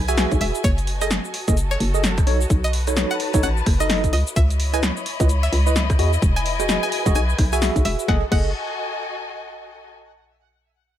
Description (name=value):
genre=UK garage, two-step garage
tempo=129 BPM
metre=4/4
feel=swing 60% on 16ths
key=F# dorian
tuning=A4 = 442 Hz
part: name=hollow knocking FM bass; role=bass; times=0.0-8.5 s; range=E1 to E2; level=-21 LUFS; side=equal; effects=none
part: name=warm studio string section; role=texture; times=0.0-9.9 s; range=E4 to B5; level=-29 LUFS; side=left 2 dB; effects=sidechain pumping
part: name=string-like resonator pluck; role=melody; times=0.1-8.5 s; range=C#5 to G#5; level=-29 LUFS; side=equal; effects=chorus, ping-pong delay
part: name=bright tine electric piano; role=stabs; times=0.1-8.5 s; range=D#4 to E5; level=-25 LUFS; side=right 1 dB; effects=medium stereo tremolo, ping-pong delay
part: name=punchy analog drum machine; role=drums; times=0.1-8.4 s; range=crash cymbal, hi-hat, rim click, shaker, snare drum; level=-26 LUFS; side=equal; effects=none
part: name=electronic kick drum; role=drums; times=0.3-8.4 s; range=none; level=-20 LUFS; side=equal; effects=none
room=little or no reverb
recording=none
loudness=-18 LUFS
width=side -11 dB against mid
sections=0.0-8.1 A section; 8.1-9.9 B section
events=drop 0.0-8.1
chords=0.0 Emaj7; 0.6 F#m69; 2.3 B7; 4.1 C#m9; 6.0 Emaj7; 8.1 F#m69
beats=0.18 | 0.64 1.11 1.57 2.04 | 2.50 2.97 3.43 3.90 | 4.36 4.83 5.29 5.76 | 6.22 6.69 7.15 7.62 | 8.08 8.55 9.01 9.48